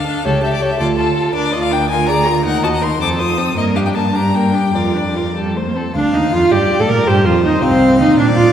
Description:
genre	quick classical-period movement for string quartet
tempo	108 BPM (dotted quarters)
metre	6/8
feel	rubato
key	unclear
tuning	A4 = 440 Hz
part	clear violin	melody	0.0-8.5 s	C4 to Eb6	-20 LUFS	left 4 dB	none
part	clear violin	second line	0.0-8.5 s	G4 to F5	-22 LUFS	left 2 dB	none
part	clear viola	accompaniment	0.0-8.5 s	G3 to Bb4	-16 LUFS	right 2 dB	none
part	rich cello	bass	0.0-8.5 s	C2 to Bb2	-18 LUFS	right 1 dB	none
room	wet concert hall reverb, RT60 2.2 s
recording	heard from further back in the room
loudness	-13 LUFS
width	side -9 dB against mid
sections	0.0-5.9 A section; 5.9-8.5 B section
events	none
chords	0.2 A7/C#; 0.8 Dm; 1.9 Bb7/D; 2.4 Ebm; 3.0 F; 3.6 Gm; 4.7 Bb/F; 5.3 F; 5.9 Dm; 6.5 Gmadd9; 7.1 F5

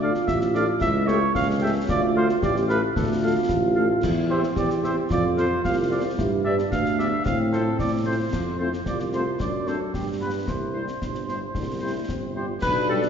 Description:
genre	military-style march for wind band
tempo	112 BPM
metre	2/4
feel	straight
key	C major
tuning	A4 = 442 Hz
part	mellow cornet	melody	0.0-13.0 s	G4 to F5	-29 LUFS	right 2 dB	none
part	warm euphonium	second line	0.0-12.6 s	C4 to G4	-28 LUFS	right 3 dB	none
part	warm woodwind section	second line	0.0-13.0 s	E4 to G5	-32 LUFS	left 2 dB	none
part	mellow French horn section	accompaniment	0.0-13.0 s	G3 to A4	-32 LUFS	left 4 dB	none
part	warm tuba	bass	0.0-13.1 s	G1 to A2	-25 LUFS	equal	none
part	concert snare drum, concert bass drum and clash cymbals	drums	0.1-13.1 s	none	-31 LUFS	left 2 dB	none
part	mellow trombone section	sustained chords	12.6-13.1 s	G3 to D4	-27 LUFS	left 1 dB	none
room	wet scoring stage reverb, RT60 2.1 s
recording	heard from further back in the room, nothing above 7.5 kHz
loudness	-21 LUFS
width	side -7 dB against mid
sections	0.0-12.6 A section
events	none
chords	0.0 Dm; 0.8 A7/C#; 1.9 Dm; 4.0 C/E; 5.1 F; 6.2 G; 7.3 F/A; 8.3 F; 9.4 D7/F#; 9.9 G7; 10.5 C

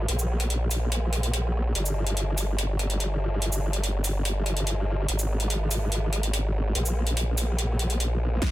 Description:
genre	heavy wobble dubstep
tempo	144 BPM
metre	4/4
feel	half-time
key	G phrygian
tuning	A4 = 440 Hz
part	formant-sweep wobble bass	bass	0.0-8.4 s	G1 to Bb1	-25 LUFS	equal	chorus, overdrive
part	big-room dance drum kit	drums	0.1-8.5 s	hi-hat, shaker, snare drum	-30 LUFS	equal	none
part	electronic kick drum	drums	8.4-8.5 s	none	-25 LUFS	equal	none
room	little or no reverb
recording	dense, heavily limited modern master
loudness	-24 LUFS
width	side -16 dB against mid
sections	0.0-8.4 A section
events	none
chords	none

